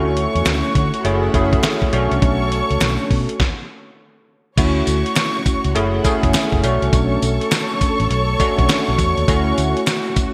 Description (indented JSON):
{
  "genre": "R&B, new jack swing",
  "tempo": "102 BPM",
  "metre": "4/4",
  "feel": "swing 64% on 16ths",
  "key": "unclear",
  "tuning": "A4 = 442 Hz",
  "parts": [
    { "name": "bell-like tine electric piano", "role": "accompaniment", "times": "0.0-10.3 s", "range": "A3 to G#4", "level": "-23 LUFS", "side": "equal", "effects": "analog chorus" },
    { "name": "rich studio string section", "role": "sustained chords", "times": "0.0-10.3 s", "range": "F#4 to C#6", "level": "-26 LUFS", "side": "equal", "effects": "none" },
    { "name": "vintage muted fingered electric bass", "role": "bass", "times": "0.0-10.2 s", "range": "F#1 to D3", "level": "-23 LUFS", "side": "equal", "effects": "none" },
    { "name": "dusty soul sampler-style drum kit", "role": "drums", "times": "0.2-10.3 s", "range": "crash cymbal, hi-hat, kick drum, snare drum, tambourine", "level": "-22 LUFS", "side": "equal", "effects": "gated reverb" },
    { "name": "group handclap", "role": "percussion", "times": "0.5-10.0 s", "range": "none", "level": "-36 LUFS", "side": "equal", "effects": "none" }
  ],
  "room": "moderate lush hall reverb, RT60 2.0 s, digital ambience",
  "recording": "bright 1980s-style digital production",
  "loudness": "-18 LUFS",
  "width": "mono",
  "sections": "0.0-4.6 A section; 4.6-10.3 B section",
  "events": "stop 3.4-4.6",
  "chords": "0.0 Dmaj7; 1.0 F#m7; 1.9 Bm9; 4.6 Dmaj7; 5.8 F#m7; 6.6 Bm9; 9.3 Dmaj7"
}